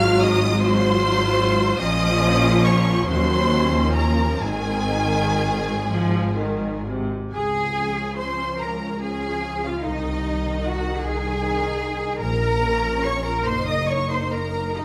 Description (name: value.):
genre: classical, slow romantic movement for string orchestra.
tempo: 40-53 BPM (dotted quarters).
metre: 6/8.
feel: rubato.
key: Db major.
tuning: A4 = 437 Hz.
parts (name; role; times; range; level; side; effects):
rich symphonic violin section; melody; 0.0-14.8 s; Eb5 to F6; -30 LUFS; equal; none.
clear symphonic violin section; second line; 0.0-14.8 s; Ab4 to Eb6; -31 LUFS; equal; none.
warm symphonic viola section; accompaniment; 0.0-14.8 s; C3 to F4; -27 LUFS; equal; none.
rich symphonic cello section; bass; 0.0-14.8 s; Eb2 to Eb5; -28 LUFS; equal; none.
rich symphonic double bass section; bass; 0.0-14.8 s; Gb1 to Eb2; -27 LUFS; equal; none.
room: moderate scoring stage reverb, RT60 1.8 s.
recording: none.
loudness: -22 LUFS.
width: mono.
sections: 0.0-7.3 A section; 7.3-14.8 B section.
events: none.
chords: 0.0 Ab6; 1.8 Bbm; 3.1 Ebm7; 4.4 Ab; 7.3 Db; 9.8 Ab/C; 12.2 Bbm; 13.5 Ebm/Gb.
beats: 0.61 | 1.81 3.09 | 4.43 5.88 | 7.33 8.59 | 9.84 11.03 | 12.19 13.46 | 14.77.